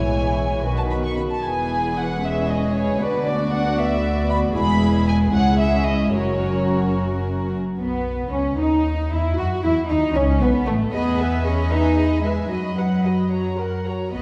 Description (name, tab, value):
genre	quick classical-period movement for string orchestra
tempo	76 BPM (dotted quarters)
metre	6/8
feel	rubato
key	E major, B major from 4.6 s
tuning	A4 = 440 Hz
part	warm chamber violin section	melody	0.0-14.2 s	A3 to C#6	-29 LUFS	equal	none
part	warm symphonic violin section	second line	0.0-14.2 s	A3 to F#5	-29 LUFS	equal	none
part	dark symphonic viola section	accompaniment	0.0-14.2 s	D#3 to B4	-27 LUFS	equal	none
part	dark symphonic double bass section	bass	0.0-14.2 s	E1 to F#2	-27 LUFS	equal	none
part	rich symphonic cello section	bass	0.0-14.2 s	C#2 to F#4	-27 LUFS	equal	none
room	wet concert hall reverb, RT60 1.9 s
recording	dark, warm production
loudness	-21 LUFS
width	mono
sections	0.0-7.8 A section; 7.8-14.2 B section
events	none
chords	0.0 E/B; 0.6 B; 1.4 E; 3.0 E5/D; 4.6 E; 5.3 C#m; 6.2 F#; 7.8 B; 9.4 B7; 10.9 Emaj7; 12.5 B/F#; 13.3 F#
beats	0.63 | 1.43 2.23 | 3.01 3.79 | 4.55 5.34 | 6.16 6.98 | 7.79 8.59 | 9.37 10.15 | 10.93 11.71 | 12.51 13.32 | 14.12